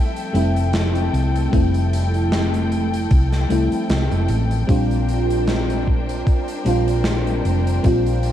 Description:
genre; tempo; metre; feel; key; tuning
vaporwave; 76 BPM; 4/4; swing 55% on 16ths; F major; A4 = 442 Hz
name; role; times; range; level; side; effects
FM electric piano with soft pad layer; accompaniment; 0.0-8.3 s; G3 to F4; -22 LUFS; equal; lush chorus, analog delay
rich studio string section; sustained chords; 0.0-8.3 s; F3 to G5; -28 LUFS; left 4 dB; none
big rock drum kit; drums; 0.2-8.3 s; hi-hat, snare drum; -28 LUFS; right 1 dB; gated reverb
hollow-body short-scale fingered electric bass; bass; 0.3-8.3 s; F1 to C2; -20 LUFS; equal; none
electronic kick drum; drums; 1.5-8.0 s; none; -18 LUFS; equal; none
room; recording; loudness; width
light reverb, small room ambience; cassette tape; -17 LUFS; side -11 dB against mid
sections
0.0-8.3 A section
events
none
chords
0.0 Fmaj9; 4.7 Bb69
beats
0.74 | 1.53 2.32 3.11 3.90 | 4.69 5.48 6.27 7.05 | 7.84

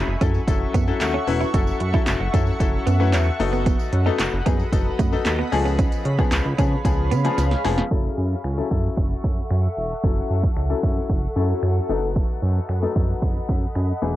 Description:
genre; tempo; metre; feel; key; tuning
dance-pop; 113 BPM; 4/4; straight; F# dorian; A4 = 440 Hz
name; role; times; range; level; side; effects
clear baby grand piano; accompaniment; 0.0-14.2 s; E3 to B4; -26 LUFS; left 6 dB; sidechain pumping
shimmering ambient pad; sustained chords; 0.0-14.2 s; G#4 to C#6; -30 LUFS; left 1 dB; chorus, built-in reverb, sidechain pumping
chorused synth bass; bass; 0.0-14.2 s; E1 to C#3; -23 LUFS; right 1 dB; sidechain pumping
direct-recorded clean electric guitar; riff; 0.2-7.9 s; G#3 to F#4; -28 LUFS; right 8 dB; wide subtle chorus
deep house drum kit; drums; 0.2-13.9 s; crash cymbal, finger snaps, handclaps, hi-hat, kick drum, snare drum; -22 LUFS; right 1 dB; cassette tape
tambourine; percussion; 0.2-7.9 s; none; -45 LUFS; right 12 dB; none
room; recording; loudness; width
light reverb; home recording on cassette, low-pass filter; -19 LUFS; side -14 dB against mid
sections
0.0-7.9 A section; 7.9-14.2 B section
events
drum fill 7.4-7.9; filter sweep 7.9-14.2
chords
0.0 F#m7; 3.4 B7/F#; 5.5 C#7; 7.9 F#m7; 11.9 B7/F#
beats
0.48 1.01 | 1.54 2.07 2.60 3.13 | 3.66 4.20 4.73 5.26 | 5.79 6.32 6.85 7.38 | 7.91 8.44 8.97 9.50 | 10.04 10.57 11.10 11.63 | 12.16 12.69 13.22 13.75

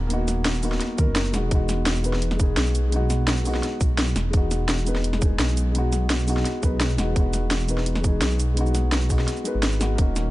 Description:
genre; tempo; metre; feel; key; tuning
liquid drum and bass; 170 BPM; 4/4; straight; unclear; A4 = 441 Hz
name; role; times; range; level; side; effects
felt-muted upright piano; accompaniment; 0.0-10.3 s; G#3 to B4; -27 LUFS; left 2 dB; digital delay
dark detuned saw bass; bass; 0.0-10.3 s; D#1 to D#2; -23 LUFS; equal; none
drum and bass drum kit; drums; 0.1-10.2 s; hi-hat, shaker, snare drum; -26 LUFS; equal; none
electronic kick drum; drums; 1.0-10.1 s; none; -21 LUFS; equal; none
room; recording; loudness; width
little or no reverb; nothing above 11.0 kHz; -20 LUFS; side -17 dB against mid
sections
0.0-10.0 A section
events
drop 0.0-10.0; break 9.3-10.0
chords
0.0 G#m7; 1.3 Emaj9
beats
| 0.10 0.45 0.81 1.16 | 1.51 1.86 2.22 2.57 | 2.92 3.28 3.63 3.98 | 4.34 4.69 5.04 5.39 | 5.75 6.10 6.45 6.81 | 7.16 7.51 7.87 8.22 | 8.57 8.92 9.28 9.63 | 9.98

